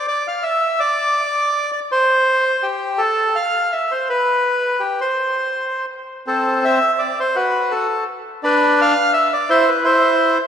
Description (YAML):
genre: musette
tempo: 166 BPM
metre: 3/4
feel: swing 55% on 8ths, rubato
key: C major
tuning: A4 = 440 Hz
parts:
  - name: bandoneon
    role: solo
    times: 0.0-10.4 s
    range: C4 to F5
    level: -15 LUFS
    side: equal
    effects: tape echo
room: wet concert hall reverb, RT60 1.8 s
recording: none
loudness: -15 LUFS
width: side -8 dB against mid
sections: 0.0-6.3 A section; 6.3-10.5 B section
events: none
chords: none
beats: 0.07 0.42 | 0.78 1.15 1.51 | 1.88 2.25 2.62 | 2.99 3.36 3.72 | 4.08 4.44 4.79 | 5.16 5.52 5.89 | 6.25 6.62 6.99 | 7.35 7.71 8.06 | 8.42 8.78 9.13 | 9.49 9.85 10.22